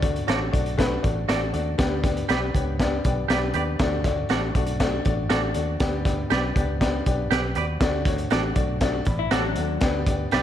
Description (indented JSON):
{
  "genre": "uptempo 1960s-style soul",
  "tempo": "119 BPM",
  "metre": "4/4",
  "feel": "straight",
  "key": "D major",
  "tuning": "A4 = 440 Hz",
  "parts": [
    { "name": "clear upright piano", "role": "accompaniment", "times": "0.0-10.4 s", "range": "A3 to B5", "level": "-27 LUFS", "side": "left 4 dB", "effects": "none" },
    { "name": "vintage muted fingered electric bass", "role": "bass", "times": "0.0-10.4 s", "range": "A1 to Eb2", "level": "-28 LUFS", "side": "right 1 dB", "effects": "none" },
    { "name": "crunchy breakbeat drum kit", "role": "drums", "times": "0.0-10.4 s", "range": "hi-hat, kick drum, snare drum", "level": "-25 LUFS", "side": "equal", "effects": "none" },
    { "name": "clean electric guitar", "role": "stabs", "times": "0.3-10.4 s", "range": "F#4 to D5", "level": "-28 LUFS", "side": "right 9 dB", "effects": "none" },
    { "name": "electric guitar through a small old amp", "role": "riff", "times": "9.2-9.8 s", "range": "F#3 to F#4", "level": "-29 LUFS", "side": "left 7 dB", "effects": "none" }
  ],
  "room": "light reverb",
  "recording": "none",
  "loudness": "-21 LUFS",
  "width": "side -10 dB against mid",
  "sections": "0.0-10.4 A section",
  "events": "upright piano fill 2.8-3.8",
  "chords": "0.0 D; 1.8 G; 3.8 D; 5.8 G; 7.8 D; 9.8 G",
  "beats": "0.28 0.78 1.28 | 1.78 2.29 2.79 3.29 | 3.79 4.30 4.80 5.30 | 5.80 6.31 6.81 7.31 | 7.81 8.31 8.82 9.32 | 9.82 10.32"
}